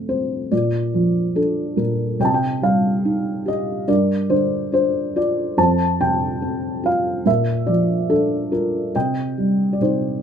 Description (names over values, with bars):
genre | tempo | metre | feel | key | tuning
classical, lyrical solo piano | 71 BPM | 4/4 | rubato | F major | A4 = 440 Hz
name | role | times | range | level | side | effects
felt-muted upright piano | solo | 0.0-10.2 s | F2 to A5 | -18 LUFS | equal | none
room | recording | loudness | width
wet small room reverb, RT60 0.5 s | none | -17 LUFS | side -8 dB against mid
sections
0.0-10.2 A section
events
none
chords
0.0 F; 0.5 Bb; 2.2 Cm; 3.9 Gm7; 5.6 F5; 7.3 Bb; 9.0 Cm